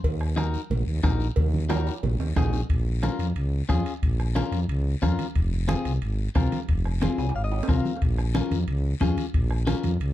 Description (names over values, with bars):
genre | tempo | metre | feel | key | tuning
latin, cumbia | 181 BPM | 4/4 | straight | Bb minor | A4 = 441 Hz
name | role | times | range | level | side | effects
growling FM bass | bass | 0.0-10.1 s | F1 to F2 | -25 LUFS | equal | none
bombo | percussion | 0.0-9.8 s | none | -26 LUFS | left 1 dB | none
cowbell and timbales | percussion | 0.0-10.1 s | none | -38 LUFS | right 6 dB | none
guiro | percussion | 0.0-10.1 s | none | -46 LUFS | left 8 dB | none
clean electric guitar | accompaniment | 0.4-9.9 s | C4 to Ab5 | -29 LUFS | left 5 dB | none
congas | percussion | 0.4-10.0 s | none | -32 LUFS | right 3 dB | none
room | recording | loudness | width
light reverb | dark, warm production | -23 LUFS | side -14 dB against mid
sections
0.0-2.7 A section; 2.7-10.1 B section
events
drum fill 1.7-2.7, 7.2-8.0; clean electric guitar fill 7.0-8.0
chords
0.0 Ebm; 2.7 Bbm; 5.4 Fm; 8.0 Bbm